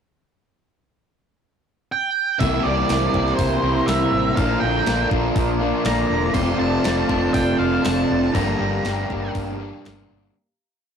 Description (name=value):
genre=rock, shoegaze and dream pop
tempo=121 BPM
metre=4/4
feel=straight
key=C mixolydian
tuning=A4 = 441 Hz
part: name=octave-fuzz lead guitar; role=melody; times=1.9-9.3 s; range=C5 to C6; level=-24 LUFS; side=right 4 dB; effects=distortion
part: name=sweeping resonant pad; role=sustained chords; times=2.4-10.3 s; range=E4 to Bb5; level=-28 LUFS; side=right 1 dB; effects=chorus
part: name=direct-recorded clean electric guitar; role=arpeggios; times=2.4-10.4 s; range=E3 to A4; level=-32 LUFS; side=left 4 dB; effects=none
part: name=biting overdriven guitar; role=riff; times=2.4-10.4 s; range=F2 to E4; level=-24 LUFS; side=right 6 dB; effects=none
part: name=overdriven semi-hollow guitar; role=riff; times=2.4-10.4 s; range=F2 to G4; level=-24 LUFS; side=left 6 dB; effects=none
part: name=vintage muted fingered electric bass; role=bass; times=2.4-10.3 s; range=E1 to C2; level=-27 LUFS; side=equal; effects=none
part: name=clean 12-bit digital drum machine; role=drums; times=2.4-10.0 s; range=hi-hat, kick drum, snare drum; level=-26 LUFS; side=left 1 dB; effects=overdrive
room=wet studio ambience, RT60 0.5 s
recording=rough rehearsal-room recording, tube saturation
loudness=-18 LUFS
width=side -7 dB against mid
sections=0.5-2.4 pickup bar; 2.4-10.4 verse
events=fade-out 8.4-10.4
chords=0.5 N.C.; 2.4 C7; 4.4 Bb; 6.4 F6; 8.4 Gm7